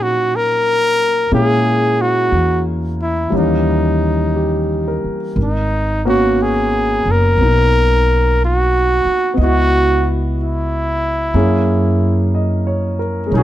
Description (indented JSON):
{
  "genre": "jazz ballad",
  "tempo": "60 BPM",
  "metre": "4/4",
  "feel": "swing 67% on 8ths",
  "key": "G# minor from 5.4 s",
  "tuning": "A4 = 441 Hz",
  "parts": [
    { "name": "clear trumpet", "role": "melody", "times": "0.0-13.4 s", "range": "Eb4 to Bb4", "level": "-16 LUFS", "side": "equal", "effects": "none" },
    { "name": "warm concert grand piano", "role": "accompaniment", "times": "0.0-13.4 s", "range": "Fb3 to F5", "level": "-19 LUFS", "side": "left 1 dB", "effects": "none" },
    { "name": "upright bass", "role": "bass", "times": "0.0-13.4 s", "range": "F#1 to Bb2", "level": "-17 LUFS", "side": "equal", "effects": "none" }
  ],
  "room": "little or no reverb",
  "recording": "close, detailed microphones",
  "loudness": "-13 LUFS",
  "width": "side -13 dB against mid",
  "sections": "0.0-5.4 A section; 5.4-13.4 B section",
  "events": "none",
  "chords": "0.0 Ebm9; 1.3 Bbm7b5; 3.3 Eb7b9; 5.4 G#m11; 9.4 C#m11; 11.3 F#7",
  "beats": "0.33 | 1.32 2.32 3.33 4.35 | 5.37 6.38 7.38 8.39 | 9.38 10.36 11.35 12.33 | 13.32"
}